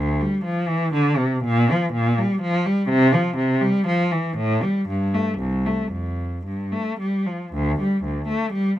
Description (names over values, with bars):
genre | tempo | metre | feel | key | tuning
classical, baroque-style suite movement for unaccompanied cello | 108-126 BPM | 3/4 | rubato | F major | A4 = 441 Hz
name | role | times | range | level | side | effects
rich cello | solo | 0.0-8.8 s | C2 to A3 | -19 LUFS | equal | none
room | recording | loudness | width
little or no reverb | close, detailed microphones | -19 LUFS | side -13 dB against mid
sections
0.0-7.5 A section; 7.5-8.8 A section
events
none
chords
none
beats
0.45 0.94 | 1.45 1.95 2.42 | 2.91 3.39 3.87 | 4.38 4.88 5.38 | 5.92 6.46 7.00 | 7.53 8.04 8.54